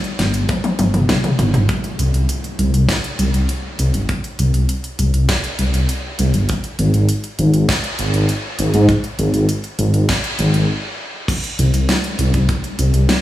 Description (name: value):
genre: synthwave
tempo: 100 BPM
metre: 4/4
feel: straight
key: unclear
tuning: A4 = 441 Hz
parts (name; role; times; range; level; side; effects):
- pop drum kit; drums; 0.0-13.2 s; crash cymbal, hi-hat, snare drum, toms; -21 LUFS; equal; high-pass filter on hats, small room ambience, high-pass filter on snare, high-pass filter on toms, high-pass filter on cymbals
- dark detuned saw bass; bass; 0.2-13.1 s; G1 to Ab2; -15 LUFS; equal; none
- kick drum; drums; 0.5-12.6 s; none; -20 LUFS; equal; small room ambience
room: light reverb, small room ambience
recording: studio reverb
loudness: -15 LUFS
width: side -14 dB against mid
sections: 0.0-1.7 A section; 1.7-11.3 B section; 11.3-13.2 C section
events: drum fill 0.5-1.7; stop 10.7-11.3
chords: none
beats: 0.49 1.09 | 1.69 2.29 2.89 3.49 | 4.09 4.69 5.29 5.89 | 6.49 7.09 7.69 8.29 | 8.89 9.49 10.09 10.69 | 11.29 11.89 12.49 13.09